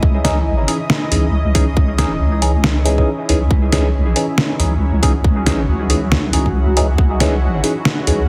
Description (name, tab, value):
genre	deep dubstep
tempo	138 BPM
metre	4/4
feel	swing 58% on 16ths, half-time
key	C# minor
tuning	A4 = 440 Hz
part	granular cloud pad	sustained chords	0.0-8.3 s	C#4 to D#5	-27 LUFS	equal	built-in reverb
part	deep soft wobble bass	bass	0.0-8.3 s	C#2	-19 LUFS	equal	chorus
part	electronic kick drum	drums	0.0-7.1 s	none	-17 LUFS	equal	none
part	barky tine electric piano	stabs	0.2-8.2 s	E3 to G#4	-23 LUFS	equal	phaser, dub echo
part	trip hop sampler-style drum kit	drums	0.2-8.2 s	hi-hat, snare drum	-21 LUFS	equal	none
room	light reverb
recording	heavily compressed radio sound, multiband compression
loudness	-16 LUFS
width	mono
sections	0.0-8.3 A section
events	none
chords	0.0 C#madd9